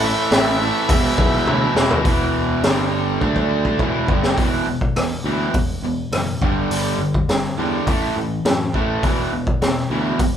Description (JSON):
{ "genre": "classic rock", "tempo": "103 BPM", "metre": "4/4", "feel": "straight", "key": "unclear", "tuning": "A4 = 440 Hz", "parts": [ { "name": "octave-fuzz lead guitar", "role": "melody", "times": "0.0-1.7 s", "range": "E5", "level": "-25 LUFS", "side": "equal", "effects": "distortion" }, { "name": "reed electric piano", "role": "accompaniment", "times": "0.0-2.0 s", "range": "G#4 to E5", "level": "-30 LUFS", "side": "left 6 dB", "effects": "none" }, { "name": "overdriven electric guitar", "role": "riff", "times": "0.0-10.4 s", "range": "E2 to E4", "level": "-24 LUFS", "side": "left 7 dB", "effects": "none" }, { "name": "raw garage guitar", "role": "riff", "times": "0.0-10.4 s", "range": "E2 to D4", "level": "-22 LUFS", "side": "right 6 dB", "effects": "overdrive" }, { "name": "picked electric bass", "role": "bass", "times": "0.0-10.4 s", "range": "E1 to F#2", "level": "-25 LUFS", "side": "equal", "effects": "none" }, { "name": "raw garage drum kit", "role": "drums", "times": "0.3-10.3 s", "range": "hi-hat, kick drum, rim click, snare drum, toms", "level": "-20 LUFS", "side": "equal", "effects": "none" } ], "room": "moderate large studio reverb, RT60 0.8 s", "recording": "band playing live in one room", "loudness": "-17 LUFS", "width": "side -9 dB against mid", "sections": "0.0-2.1 A section; 2.1-4.4 B section; 4.4-10.4 C section", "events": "drum fill 1.5-2.1, 3.2-4.4", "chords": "0.0 A; 0.9 E; 2.1 E5; 2.6 G5; 3.2 D5; 3.8 E5; 6.4 G5; 7.9 A5; 9.0 E5", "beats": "0.31 0.89 1.47 | 2.05 2.63 3.21 3.80 | 4.38 4.96 5.54 6.12 | 6.71 7.29 7.87 8.45 | 9.04 9.62 10.20" }